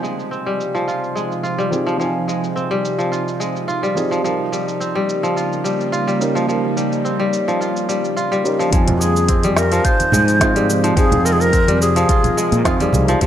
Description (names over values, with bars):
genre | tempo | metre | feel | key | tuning
organic downtempo | 107 BPM | 4/4 | swing 54% on 16ths | F minor | A4 = 439 Hz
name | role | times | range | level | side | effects
felt-muted upright piano | accompaniment | 0.0-13.3 s | F3 to Ab5 | -25 LUFS | right 2 dB | sidechain pumping, digital delay
bowed-like drone | sustained chords | 0.0-13.3 s | C3 to F4 | -25 LUFS | right 1 dB | built-in reverb, sidechain pumping
kora | arpeggios | 0.0-13.3 s | F3 to F4 | -20 LUFS | equal | low-pass filter, digital delay
organic electronic drum kit | drums | 0.0-13.3 s | hi-hat, shaker, snare drum | -25 LUFS | equal | low-pass filter on perc, low-pass filter on hats, low-pass filter on snare, low-pass filter on room
breathy low Native American-style wooden flute | melody | 8.7-13.3 s | F4 to C5 | -19 LUFS | equal | tape echo
fretless electric bass | bass | 8.7-13.3 s | C2 to Bb2 | -18 LUFS | equal | sidechain pumping
electronic kick drum | drums | 8.7-13.3 s | none | -18 LUFS | equal | none
congas | percussion | 8.9-13.1 s | none | -23 LUFS | right 2 dB | none
room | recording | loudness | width
moderate lush hall reverb, RT60 1.7 s, small room ambience | none | -15 LUFS | side -10 dB against mid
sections
0.0-8.7 A section; 8.7-13.3 B section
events
none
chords
0.0 Fm7; 4.2 Eb7; 8.7 Fm7